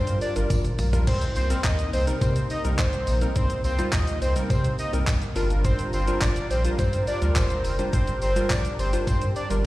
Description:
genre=dance-pop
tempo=105 BPM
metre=4/4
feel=straight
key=C minor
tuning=A4 = 440 Hz
part: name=fat analog lead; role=melody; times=0.0-9.5 s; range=C5 to Eb5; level=-29 LUFS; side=equal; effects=sidechain pumping, slapback echo, digital delay
part: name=glassy digital keys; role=accompaniment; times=0.0-9.7 s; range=G3 to C5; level=-31 LUFS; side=equal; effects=chorus, sidechain pumping, slapback echo
part: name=warm analog pad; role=sustained chords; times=0.0-9.7 s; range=C3 to Bb4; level=-34 LUFS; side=equal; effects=chorus, sidechain pumping
part: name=warm sub bass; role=bass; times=0.0-9.7 s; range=F1 to C3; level=-25 LUFS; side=equal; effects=sidechain pumping
part: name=crisp 8-bit digital drum machine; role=drums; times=0.1-9.6 s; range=crash cymbal, handclaps, hi-hat, kick drum, shaker, toms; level=-27 LUFS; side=equal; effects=none
part: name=tambourine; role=percussion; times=0.5-9.2 s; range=none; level=-45 LUFS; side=right 5 dB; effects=none
room=little or no reverb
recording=live gig heard through the venue's PA, recital hall reverb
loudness=-21 LUFS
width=side -17 dB against mid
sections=0.0-9.7 A section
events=drum fill 0.5-1.1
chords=0.0 Gm7; 1.1 Cm7; 5.4 Gm7

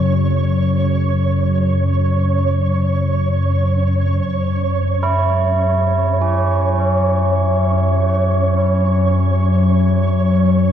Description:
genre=dark ambient drone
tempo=free time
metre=none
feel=none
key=unclear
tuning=A4 = 440 Hz
part: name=deep rumbling drone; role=drone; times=0.0-10.7 s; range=F#2 to C#3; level=-15 LUFS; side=left 1 dB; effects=built-in reverb
part: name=flickering grainy texture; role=texture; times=0.0-10.7 s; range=C#5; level=-22 LUFS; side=right 2 dB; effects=built-in reverb
part: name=tubular bells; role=arpeggios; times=5.0-10.7 s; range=C#4 to E4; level=-20 LUFS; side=right 2 dB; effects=ping-pong delay
room=wet cathedral reverb, RT60 5.1 s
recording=none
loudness=-14 LUFS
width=side -9 dB against mid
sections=0.0-4.2 A section; 4.2-10.7 B section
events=none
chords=0.0 N.C.; 4.2 F#5

